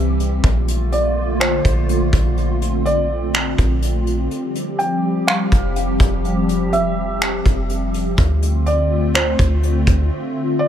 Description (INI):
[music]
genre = hip hop, atmospheric cloud-rap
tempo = 124 BPM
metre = 4/4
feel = half-time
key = F major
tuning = A4 = 444 Hz
[part]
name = hollow soft pad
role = sustained chords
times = 0.0-10.7 s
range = D3 to G4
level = -21 LUFS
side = left 1 dB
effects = ensemble chorus, sidechain pumping
[part]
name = soft 808-style bass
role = bass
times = 0.0-10.1 s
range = F1 to D2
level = -19 LUFS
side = equal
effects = none
[part]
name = soft brush drum kit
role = drums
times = 0.2-10.0 s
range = finger snaps, hi-hat, kick drum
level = -19 LUFS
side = equal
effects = none
[part]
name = felt-muted upright piano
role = melody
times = 0.9-10.7 s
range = C5 to G5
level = -24 LUFS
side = right 1 dB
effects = low-pass filter, ping-pong delay
[sound]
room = light reverb, small room ambience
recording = none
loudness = -16 LUFS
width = side -10 dB against mid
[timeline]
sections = 0.0-10.7 A section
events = break 4.3-4.8, 10.1-10.7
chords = 0.4 Bbmaj7; 4.3 Fsus2; 8.2 Dm7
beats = | 0.44 0.92 1.41 1.89 | 2.37 2.86 3.34 3.83 | 4.31 4.79 5.28 5.76 | 6.24 6.73 7.21 7.70 | 8.18 8.66 9.15 9.63 | 10.12 10.60